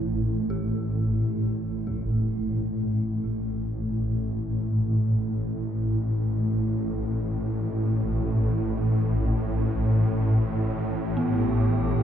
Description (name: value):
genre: dark ambient drone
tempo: free time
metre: none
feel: none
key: A minor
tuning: A4 = 440 Hz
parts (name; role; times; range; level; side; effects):
- dark detuned synth bell; arpeggios; 0.0-12.0 s; B3 to G4; -34 LUFS; equal; chorus, shimmer reverb
- swarming drone; drone; 0.0-12.0 s; A1 to A2; -24 LUFS; equal; built-in reverb
- impact; percussion; 1.9-2.1 s; none; -43 LUFS; equal; none
- deep dark ambient pad; sustained chords; 12.0 s; none; barely audible; none; none
- metallic inharmonic drone; texture; 11.1-12.0 s; G4; -36 LUFS; right 6 dB; chorus, built-in reverb, phaser
room: wet cathedral reverb, RT60 6.6 s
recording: in a vast, echoing space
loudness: -23 LUFS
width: side -9 dB against mid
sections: 0.0-12.0 A section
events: fade-in on synth bell 0.0-12.0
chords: 0.0 Am; 11.0 Em/A (rootless)